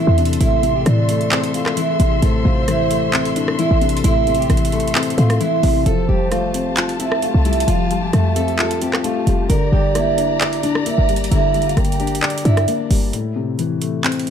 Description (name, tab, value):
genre	hip hop, trap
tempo	132 BPM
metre	4/4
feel	half-time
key	A phrygian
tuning	A4 = 440 Hz
part	fingerpicked steel-string acoustic guitar	melody	0.0-13.1 s	D4 to Bb4	-22 LUFS	right 4 dB	low-pass filter
part	dark concert grand piano	accompaniment	0.0-14.3 s	A2 to D5	-21 LUFS	left 5 dB	low-pass filter
part	warm studio string section	sustained chords	0.0-13.1 s	F4 to C6	-28 LUFS	left 4 dB	none
part	short 808-style bass	bass	0.0-13.1 s	F1 to A2	-18 LUFS	equal	none
part	trap drum kit	drums	0.2-14.3 s	handclaps, hi-hat, rim click	-23 LUFS	right 1 dB	none
part	hollow clarinet-like synth lead	second line	0.9-12.6 s	C5 to G5	-26 LUFS	right 5 dB	chorus, digital delay
room	small room ambience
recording	dark, warm production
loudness	-15 LUFS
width	side -8 dB against mid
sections	0.0-13.1 A section; 13.1-14.3 B section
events	break 13.1-14.3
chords	0.0 Am; 5.9 Fadd9; 9.5 Gm; 13.1 Am